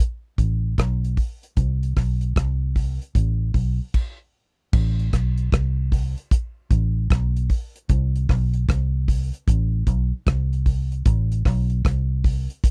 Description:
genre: roots reggae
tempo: 76 BPM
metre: 4/4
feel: swing 65% on 16ths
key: A minor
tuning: A4 = 440 Hz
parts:
  - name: damped 70s drum kit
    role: drums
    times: 0.0-12.7 s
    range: crash cymbal, hi-hat, kick drum, rim click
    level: -23 LUFS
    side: equal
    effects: none
  - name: vintage muted fingered electric bass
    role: bass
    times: 0.4-12.5 s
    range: A1 to C2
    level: -24 LUFS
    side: equal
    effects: none
room: little or no reverb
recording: dry, close 1970s-style studio recording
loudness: -22 LUFS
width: mono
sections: 0.0-4.7 A section; 4.7-12.7 B section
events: stop 3.9-4.7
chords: none

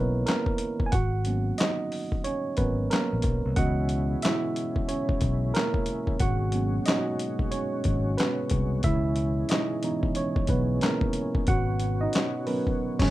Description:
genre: R&B, neo-soul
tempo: 91 BPM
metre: 4/4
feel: swing 60% on 16ths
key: C# dorian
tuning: A4 = 440 Hz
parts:
  - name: tine electric piano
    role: accompaniment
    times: 0.0-13.1 s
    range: E3 to G#5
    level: -28 LUFS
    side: right 3 dB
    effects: none
  - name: fingered electric bass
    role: bass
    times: 0.0-13.1 s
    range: G#1 to C#2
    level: -27 LUFS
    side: left 1 dB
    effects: none
  - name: dusty soul sampler-style drum kit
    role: drums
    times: 0.3-13.1 s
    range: crash cymbal, handclaps, hi-hat, kick drum, snare drum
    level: -27 LUFS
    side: left 1 dB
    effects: overdrive
  - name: tonewheel organ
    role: sustained chords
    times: 3.6-13.1 s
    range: B2 to F#4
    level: -33 LUFS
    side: left 2 dB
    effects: chorus vibrato, wide subtle chorus
room: little or no reverb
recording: rough home demo mix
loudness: -24 LUFS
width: side -15 dB against mid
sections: 0.0-13.1 A section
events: tine electric piano solo 0.0-13.1; band accent 12.8-13.1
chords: 0.0 C#m7; 0.9 G#m11; 3.6 C#m7; 6.2 G#m11; 8.8 C#m7; 11.5 G#m11

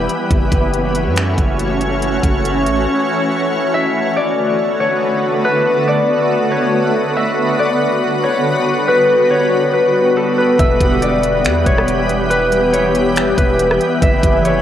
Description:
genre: hip hop, atmospheric cloud-rap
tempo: 140 BPM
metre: 4/4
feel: half-time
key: B minor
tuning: A4 = 440 Hz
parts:
  - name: shimmering ambient pad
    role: sustained chords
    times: 0.0-14.6 s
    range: D3 to C#5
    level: -16 LUFS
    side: equal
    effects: chorus, built-in reverb, sidechain pumping, cassette tape
  - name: long sustained 808-style bass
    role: bass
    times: 0.0-2.9, 10.6-14.6 s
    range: E1 to F#2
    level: -21 LUFS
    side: equal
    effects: none
  - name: wind-like tuned noise texture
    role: texture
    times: 0.0-3.7, 11.4-14.6 s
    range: A3 to E5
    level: -26 LUFS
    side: equal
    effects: built-in reverb, cassette tape
  - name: trap drum kit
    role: drums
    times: 0.1-2.8, 10.6-14.6 s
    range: finger snaps, hi-hat, kick drum, rim click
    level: -17 LUFS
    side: equal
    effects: cassette tape
  - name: concert harp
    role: melody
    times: 3.7-14.6 s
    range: A4 to E5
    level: -16 LUFS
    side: left 2 dB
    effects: low-pass filter, cassette tape, analog delay
room: light reverb, digital ambience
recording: home recording on cassette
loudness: -13 LUFS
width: side -10 dB against mid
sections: 0.0-3.7 A section; 3.7-14.6 B section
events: none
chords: 0.3 F#m7; 3.7 Bm7; 7.2 Gmaj7; 10.6 Em; 14.0 F#m7

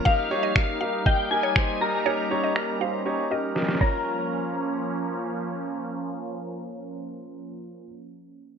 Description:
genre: dance-pop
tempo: 120 BPM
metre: 4/4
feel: straight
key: Bb dorian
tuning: A4 = 440 Hz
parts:
  - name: sweeping resonant pad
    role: sustained chords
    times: 0.0-7.9 s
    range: F3 to Eb4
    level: -31 LUFS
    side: right 2 dB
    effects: chorus, sidechain pumping
  - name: mallet-like synth pluck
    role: melody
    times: 0.1-5.5 s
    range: Db5 to F5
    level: -32 LUFS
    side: right 2 dB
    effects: chorus, digital delay
  - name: shimmering bell with halo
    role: melody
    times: 0.1-7.9 s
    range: F5 to Bb5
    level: -29 LUFS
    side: left 4 dB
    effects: ensemble chorus
  - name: clear concert grand piano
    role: accompaniment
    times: 0.1-7.9 s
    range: Db4 to Db5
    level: -30 LUFS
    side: equal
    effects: sidechain pumping
  - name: smooth R&B drum kit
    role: drums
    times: 0.1-3.9 s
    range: crash cymbal, finger snaps, kick drum, snare drum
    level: -23 LUFS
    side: equal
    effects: none
room: moderate plate reverb, RT60 1.8 s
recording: bright 1980s-style digital production, low-pass filter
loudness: -23 LUFS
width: side -6 dB against mid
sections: 0.0-4.1 A section; 4.1-8.1 B section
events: filter sweep 0.0-4.1; drum fill 3.6-4.1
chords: 0.1 Eb; 3.8 Bbm

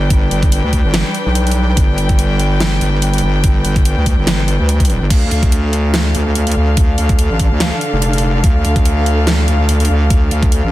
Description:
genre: heavy wobble dubstep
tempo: 144 BPM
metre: 4/4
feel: swing 55% on 16ths, half-time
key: D dorian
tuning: A4 = 440 Hz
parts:
  - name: warm chamber string section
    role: sustained chords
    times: 0.0-10.7 s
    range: D3 to G5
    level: -20 LUFS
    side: left 1 dB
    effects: sidechain pumping
  - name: wobble bass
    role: bass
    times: 0.0-10.7 s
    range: F1 to D2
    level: -14 LUFS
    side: equal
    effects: chorus, overdrive
  - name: dubstep drum kit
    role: drums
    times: 0.1-10.6 s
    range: crash cymbal, hi-hat, snare drum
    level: -20 LUFS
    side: right 1 dB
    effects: overdrive
  - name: electronic kick drum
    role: drums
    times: 0.1-10.5 s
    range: none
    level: -13 LUFS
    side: equal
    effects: overdrive
room: little or no reverb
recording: dense, heavily limited modern master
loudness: -12 LUFS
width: side -15 dB against mid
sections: 0.0-10.7 A section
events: none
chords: 0.0 G; 5.1 Dm

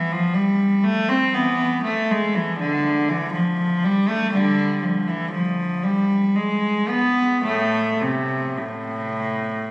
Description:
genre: classical, baroque-style suite movement for unaccompanied cello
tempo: 52-62 BPM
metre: 3/4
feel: rubato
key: A minor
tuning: A4 = 443 Hz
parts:
  - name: rich cello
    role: solo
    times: 0.0-9.7 s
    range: A2 to C4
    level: -18 LUFS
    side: equal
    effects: none
room: wet cathedral reverb, RT60 5.3 s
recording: recorded on a phone in the room, studio reverb, compression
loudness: -18 LUFS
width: side -23 dB against mid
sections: 0.0-9.7 A section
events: none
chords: none

